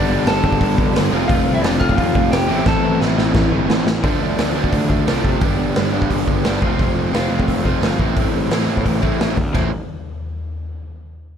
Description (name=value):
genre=punk rock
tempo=174 BPM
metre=4/4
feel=straight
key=A minor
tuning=A4 = 440 Hz
part: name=lightly driven lead guitar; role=melody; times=0.0-3.0 s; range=D4 to A5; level=-22 LUFS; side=left 1 dB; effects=none
part: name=high-gain distorted guitar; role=riff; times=0.0-3.9 s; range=F2 to A3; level=-25 LUFS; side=left 1 dB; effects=distortion
part: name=overdriven electric guitar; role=riff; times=0.0-9.7 s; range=G2 to F4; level=-23 LUFS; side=left 16 dB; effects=none
part: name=overdriven electric guitar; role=riff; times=0.0-9.7 s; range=G2 to F4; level=-22 LUFS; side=right 12 dB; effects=none
part: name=fuzz picked electric bass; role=bass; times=0.0-9.7 s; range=F1 to C3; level=-22 LUFS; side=equal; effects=overdrive
part: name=raw garage drum kit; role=drums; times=0.3-9.6 s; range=crash cymbal, hi-hat, kick drum, snare drum, toms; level=-20 LUFS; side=equal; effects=none
room=little or no reverb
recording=none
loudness=-15 LUFS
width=side -8 dB against mid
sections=0.0-4.0 A section; 4.0-9.5 B section; 9.5-10.9 C section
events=drum fill 2.7-4.0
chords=0.0 G; 1.1 F; 2.5 Am; 4.0 Dm; 5.4 G; 6.6 F; 8.0 Am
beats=0.27 0.61 0.95 | 1.29 1.64 1.98 2.32 | 2.66 3.01 3.35 3.69 | 4.04 4.38 4.72 5.07 | 5.41 5.75 6.10 6.44 | 6.79 7.13 7.48 7.82 | 8.17 8.51 8.86 9.20 | 9.54